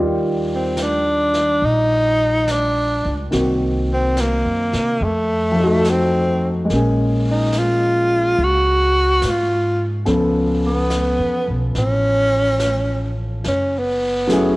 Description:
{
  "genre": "jazz ballad",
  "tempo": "71 BPM",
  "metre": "4/4",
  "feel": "swing 68% on 8ths",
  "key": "unclear",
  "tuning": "A4 = 440 Hz",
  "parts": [
    { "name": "warm grand piano", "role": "accompaniment", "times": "0.0-14.6 s", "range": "Eb3 to D5", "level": "-21 LUFS", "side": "left 1 dB", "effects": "cassette tape" },
    { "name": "upright bass", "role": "bass", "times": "0.0-14.6 s", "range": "F#1 to C3", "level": "-22 LUFS", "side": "equal", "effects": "none" },
    { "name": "breathy tenor saxophone", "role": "melody", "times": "0.6-14.6 s", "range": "A3 to Gb4", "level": "-18 LUFS", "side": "equal", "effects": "none" },
    { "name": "jazz brush drum kit", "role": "drums", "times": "0.8-14.6 s", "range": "brushed snare drum, hi-hat, snare drum", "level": "-32 LUFS", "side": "equal", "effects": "cassette tape" }
  ],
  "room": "light reverb, studio ambience",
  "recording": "home recording on cassette",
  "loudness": "-16 LUFS",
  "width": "side -20 dB against mid",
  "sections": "0.0-13.4 A section; 13.4-14.6 B section",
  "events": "tenor saxophone solo 13.4-14.6",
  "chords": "0.0 Ebmaj9; 3.3 Cm7b5; 5.0 F7b9; 6.7 Bbm7; 10.1 Db7b13; 13.4 F#m9"
}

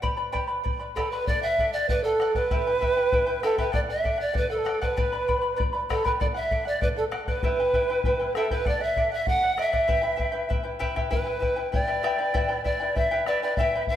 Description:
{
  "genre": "andean folk, Andean ensemble",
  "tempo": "98 BPM",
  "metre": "2/4",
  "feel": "straight",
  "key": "E minor",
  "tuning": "A4 = 440 Hz",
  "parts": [
    { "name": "charango", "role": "accompaniment", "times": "0.0-14.0 s", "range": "E4 to B5", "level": "-30 LUFS", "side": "left 2 dB", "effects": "none" },
    { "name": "bombo", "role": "percussion", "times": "0.0-14.0 s", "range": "none", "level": "-30 LUFS", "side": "left 1 dB", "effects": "none" },
    { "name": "polished pan flute", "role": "melody", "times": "1.0-14.0 s", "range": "A4 to G5", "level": "-26 LUFS", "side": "equal", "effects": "none" },
    { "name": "breathy large quena", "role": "second line", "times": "1.0-14.0 s", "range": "A4 to G5", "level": "-29 LUFS", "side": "right 3 dB", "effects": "none" }
  ],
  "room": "wet recital hall reverb, RT60 1.4 s",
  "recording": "none",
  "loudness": "-23 LUFS",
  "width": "side -11 dB against mid",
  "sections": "0.0-1.3 A section; 1.3-11.1 B section; 11.1-14.0 C section",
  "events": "none",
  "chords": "0.0 G; 1.3 D; 2.5 Em; 3.7 D; 5.0 G; 6.2 D; 7.4 Em; 8.7 D; 9.9 Em"
}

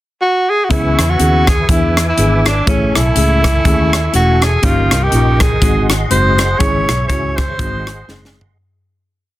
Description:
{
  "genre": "uptempo gospel",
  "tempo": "122 BPM",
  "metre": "4/4",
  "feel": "swing 57% on 8ths",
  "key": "C# minor",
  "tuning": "A4 = 440 Hz",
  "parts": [
    { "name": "breathy tenor saxophone", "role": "melody", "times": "0.2-8.4 s", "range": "C#4 to C#5", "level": "-16 LUFS", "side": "equal", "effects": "none" },
    { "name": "mellow tine electric piano", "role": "accompaniment", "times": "0.7-8.4 s", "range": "G2 to G#4", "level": "-19 LUFS", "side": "left 2 dB", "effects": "medium stereo tremolo" },
    { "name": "tonewheel organ", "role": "sustained chords", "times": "0.7-8.6 s", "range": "G#4 to D6", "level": "-24 LUFS", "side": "right 2 dB", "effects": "slow rotary speaker, chorus vibrato" },
    { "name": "vintage muted fingered electric bass", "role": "bass", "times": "0.7-8.5 s", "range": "E1 to E2", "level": "-16 LUFS", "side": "equal", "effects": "none" },
    { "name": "crisp fusion drum kit", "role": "drums", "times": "0.7-8.5 s", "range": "hi-hat, kick drum, rim click, snare drum, toms", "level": "-16 LUFS", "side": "equal", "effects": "soft clipping on snare" }
  ],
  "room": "small room ambience",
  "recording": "dense, heavily limited modern master",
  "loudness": "-11 LUFS",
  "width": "side -15 dB against mid",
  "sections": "0.0-0.7 pickup bar; 0.7-8.6 verse",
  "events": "fade-out 6.6-8.6; drum fill 8.1-8.6",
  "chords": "0.0 N.C.; 0.7 C#m7; 1.7 E7; 2.7 Amaj7; 4.6 D#7/G; 5.6 G#7; 6.6 C#m/G#; 7.6 G#7"
}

